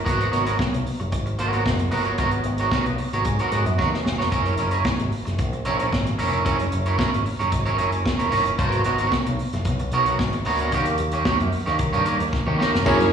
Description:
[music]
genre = disco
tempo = 112 BPM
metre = 4/4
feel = straight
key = G# minor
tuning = A4 = 440 Hz
[part]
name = electric guitar at the edge of break-up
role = accompaniment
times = 0.0-13.1 s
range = A#3 to C#5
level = -23 LUFS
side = right 3 dB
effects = lush chorus, slapback echo
[part]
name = picked electric bass with an envelope filter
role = bass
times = 0.1-13.1 s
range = E1 to D#3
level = -25 LUFS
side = equal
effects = none
[part]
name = vintage drum kit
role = drums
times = 0.1-13.1 s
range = crash cymbal, hi-hat, kick drum, snare drum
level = -26 LUFS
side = equal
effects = slapback echo
[part]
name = dark studio string section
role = second line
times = 12.9-13.1 s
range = C#4 to C#5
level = -20 LUFS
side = equal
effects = none
[part]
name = tine electric piano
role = accompaniment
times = 12.9-13.1 s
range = F#3 to A#4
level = -19 LUFS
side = left 2 dB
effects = overdrive, fast stereo tremolo
[part]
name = dark French horn section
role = sustained chords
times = 12.9-13.1 s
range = E3 to A#4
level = -25 LUFS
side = right 3 dB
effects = none
[part]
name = tambourine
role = percussion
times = 12.9-13.0 s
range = none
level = -42 LUFS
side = left 6 dB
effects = none
[sound]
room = light reverb, small room ambience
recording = live gig heard through the venue's PA, recital hall reverb, studio reverb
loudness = -20 LUFS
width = side -7 dB against mid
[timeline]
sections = 0.0-12.9 A section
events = drum fill 3.8-4.3, 12.3-12.9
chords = 0.1 G#m11; 4.3 F#7; 8.6 G#m11; 10.7 D#7

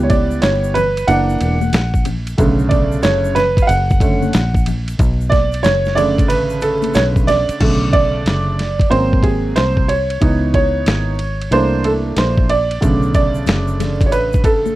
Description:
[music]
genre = hip hop, jazz-hop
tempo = 92 BPM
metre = 4/4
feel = swing 64% on 16ths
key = B minor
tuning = A4 = 440 Hz
[part]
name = warm upright piano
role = accompaniment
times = 0.0-14.8 s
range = C#3 to F#5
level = -16 LUFS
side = right 2 dB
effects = plate reverb
[part]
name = fingered electric bass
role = bass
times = 0.0-14.7 s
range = E1 to C#2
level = -19 LUFS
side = equal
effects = none
[part]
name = dusty soul sampler-style drum kit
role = drums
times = 0.1-14.6 s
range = crash cymbal, hi-hat, kick drum, ride cymbal, snare drum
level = -17 LUFS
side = equal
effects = none
[part]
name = congas and egg shaker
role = percussion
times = 0.1-7.6, 12.8-14.8 s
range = none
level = -28 LUFS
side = left 9 dB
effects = none
[sound]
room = light reverb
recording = dark, warm production, vinyl crackle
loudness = -13 LUFS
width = side -16 dB against mid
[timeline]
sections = 0.0-7.6 A section; 7.6-14.8 B section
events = upright piano solo 0.0-7.6, 7.6-14.8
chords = 0.0 C#m7b5; 1.1 F#aug7; 2.4 Bm7; 8.9 G#7; 10.2 C#m7; 11.5 C13; 12.8 Bm7

